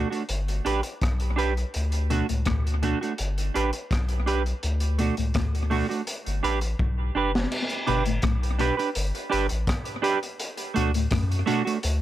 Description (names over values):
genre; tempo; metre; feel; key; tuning
roots reggae; 83 BPM; 4/4; straight; unclear; A4 = 440 Hz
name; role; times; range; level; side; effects
clean electric guitar; accompaniment; 0.0-11.8 s; A3 to B4; -28 LUFS; right 5 dB; analog chorus, tape echo
mellow electric guitar; arpeggios; 0.0-11.6 s; A2 to B2; -30 LUFS; left 6 dB; wide subtle chorus
warm sub bass; bass; 0.0-12.0 s; F#1 to F#2; -26 LUFS; left 1 dB; none
crunchy breakbeat drum kit; drums; 0.1-12.0 s; crash cymbal, hi-hat, kick drum, rim click, snare drum; -30 LUFS; left 1 dB; tape echo
room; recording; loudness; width
light reverb; none; -23 LUFS; side -13 dB against mid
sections
0.0-7.5 A section; 7.5-12.0 B section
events
drum fill 6.8-7.5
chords
0.3 G; 1.7 D; 3.2 G; 4.6 D; 6.1 G; 10.4 D